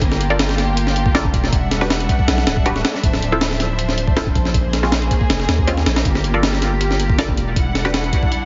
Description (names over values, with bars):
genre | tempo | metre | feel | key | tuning
drum and bass, jungle | 159 BPM | 4/4 | straight | unclear | A4 = 440 Hz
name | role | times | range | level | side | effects
rich symphonic string section | sustained chords | 0.0-8.4 s | F3 to F#5 | -26 LUFS | equal | vintage 12-bit sampler grit
long sustained 808-style bass | bass | 0.0-8.1 s | D1 to Eb2 | -23 LUFS | equal | none
breakbeat sampler-style drum kit | drums | 0.0-8.4 s | hi-hat, kick drum, snare drum | -20 LUFS | equal | studio reverb
filtered dub chord stab | stabs | 0.3-8.4 s | Ab3 to D5 | -27 LUFS | equal | phaser, dub echo
room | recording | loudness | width
light reverb | heavily compressed radio sound, nothing above 7.5 kHz | -18 LUFS | mono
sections
0.0-8.4 A section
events
none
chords
0.0 Gm9; 1.5 Em9; 3.0 Dm9; 4.5 Bbm9; 6.1 Gm9; 7.6 Em9